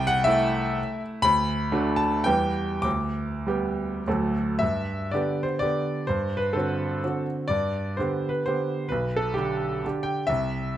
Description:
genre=classical, romantic triple-time dance for piano with dotted rhythms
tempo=95-138 BPM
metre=3/4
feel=rubato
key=G major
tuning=A4 = 439 Hz
part: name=clear grand piano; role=solo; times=0.0-10.8 s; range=B1 to D6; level=-23 LUFS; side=equal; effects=none
room=moderate recital hall reverb, RT60 1.5 s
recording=close, detailed microphones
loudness=-23 LUFS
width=side -12 dB against mid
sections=0.0-4.6 A section; 4.6-10.8 B section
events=none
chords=0.0 Am/C; 1.2 D; 2.3 Em; 2.9 G/D; 4.1 D; 4.6 G; 6.1 D7/G; 7.5 G; 8.9 G/B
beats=0.27 0.78 | 1.25 1.73 2.26 | 2.85 3.47 4.07 | 4.61 5.12 5.61 | 6.08 6.54 7.03 | 7.50 7.97 8.45 | 8.90 9.36 9.85 | 10.30 10.77

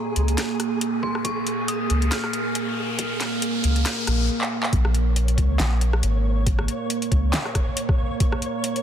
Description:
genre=deep dubstep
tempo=138 BPM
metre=4/4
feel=swing 56% on 16ths, half-time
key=Bb minor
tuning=A4 = 440 Hz
part: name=dark detuned synth bell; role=melody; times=0.0-4.3 s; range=Bb5 to F6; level=-33 LUFS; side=left 2 dB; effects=chorus, dub echo
part: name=deep dark ambient pad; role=sustained chords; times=0.0-8.8 s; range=Bb3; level=-28 LUFS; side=right 3 dB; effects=chorus, built-in reverb
part: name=riser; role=sound effects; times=0.0-4.3 s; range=none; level=-32 LUFS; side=left 1 dB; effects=none
part: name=flickering grainy texture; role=texture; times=0.0-8.8 s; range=Ab4 to Db5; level=-33 LUFS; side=equal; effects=built-in reverb
part: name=soft dub sub bass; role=bass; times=0.2-7.3 s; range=Ab1 to Db2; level=-20 LUFS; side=equal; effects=tube saturation
part: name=deep house drum kit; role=drums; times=0.2-8.8 s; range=handclaps, hi-hat, rim click, snare drum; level=-28 LUFS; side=left 1 dB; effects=overdrive, high-pass filter on hats, high-pass filter on snare
part: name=electronic kick drum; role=drums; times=1.0-8.3 s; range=none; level=-23 LUFS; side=equal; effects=high-pass filter on kick
room=little or no reverb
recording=dense, heavily limited modern master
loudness=-20 LUFS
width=side -9 dB against mid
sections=0.0-4.7 A section; 4.7-8.8 B section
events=build-up 0.0-4.7; riser 0.0-4.3; filter sweep on ambient pad 0.0-4.7; drum fill 4.4-4.7; drop 4.7-8.8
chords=0.0 Bbm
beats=0.38 0.81 | 1.25 1.68 2.12 2.55 | 2.99 3.42 3.86 4.29 | 4.73 5.16 5.59 6.03 | 6.46 6.90 7.33 7.77 | 8.20 8.64

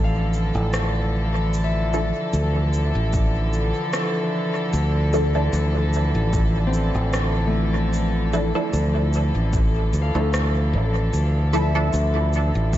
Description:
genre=ambient dub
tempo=75 BPM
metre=4/4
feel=swing 54% on 16ths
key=D minor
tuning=A4 = 438 Hz
part: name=dark studio string section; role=sustained chords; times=0.0-12.8 s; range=D3 to A4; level=-26 LUFS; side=equal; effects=none
part: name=Celtic harp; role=arpeggios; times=0.0-12.8 s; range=A3 to F5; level=-32 LUFS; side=left 3 dB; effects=dub echo
part: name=fingered electric bass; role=bass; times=0.0-12.8 s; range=A1 to D2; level=-21 LUFS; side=equal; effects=none
part: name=electronic shaker and rim click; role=drums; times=0.3-12.8 s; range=none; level=-31 LUFS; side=equal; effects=overdrive, dub echo
part: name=filtered dub chord stab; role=stabs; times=1.9-11.9 s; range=F3 to A4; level=-28 LUFS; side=equal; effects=phaser, ensemble chorus, dub echo
part: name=electronic kick drum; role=drums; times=3.1-12.8 s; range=none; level=-23 LUFS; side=equal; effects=none
room=light reverb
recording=vinyl crackle, nothing above 7.8 kHz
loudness=-19 LUFS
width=side -13 dB against mid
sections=0.0-12.8 A section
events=none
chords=0.0 Dmadd9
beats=0.73 | 1.53 2.33 3.13 3.94 | 4.74 5.54 6.33 7.13 | 7.93 8.73 9.54 10.34 | 11.13 11.94 12.73

